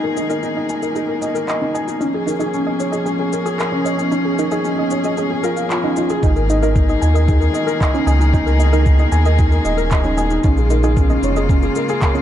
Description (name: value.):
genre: piano and strings electronica.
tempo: 114 BPM.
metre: 4/4.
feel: straight.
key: unclear.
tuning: A4 = 441 Hz.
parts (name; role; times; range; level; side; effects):
dark string quartet; sustained chords; 0.0-12.2 s; Db3 to Ab4; -24 LUFS; left 2 dB; none.
felt-muted upright piano; riff; 0.0-12.2 s; Db4 to Ab5; -20 LUFS; left 1 dB; digital delay.
soft round pluck; arpeggios; 0.2-12.2 s; Db4 to Eb5; -25 LUFS; right 4 dB; chorus, sidechain pumping, digital delay.
electronic shaker and handclaps; drums; 0.2-12.2 s; none; -28 LUFS; equal; overdrive, high-pass filter on perc, high-pass filter on snare, high-pass filter on room.
warm sub bass; bass; 6.2-11.7 s; Eb1 to Eb2; -16 LUFS; equal; sidechain pumping.
electronic kick drum; drums; 6.2-12.1 s; none; -16 LUFS; equal; none.
room: light reverb, digital ambience.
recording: dark, warm production, nothing above 10.6 kHz.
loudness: -15 LUFS.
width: side -11 dB against mid.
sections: 0.0-6.2 A section; 6.2-12.2 B section.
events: build-up 0.0-6.2; filter sweep on synth arpeggio sound 0.0-6.2; drop 6.2-12.2.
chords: 0.0 Absus2; 2.0 Bbm7; 6.2 Absus2; 10.4 Bbm7.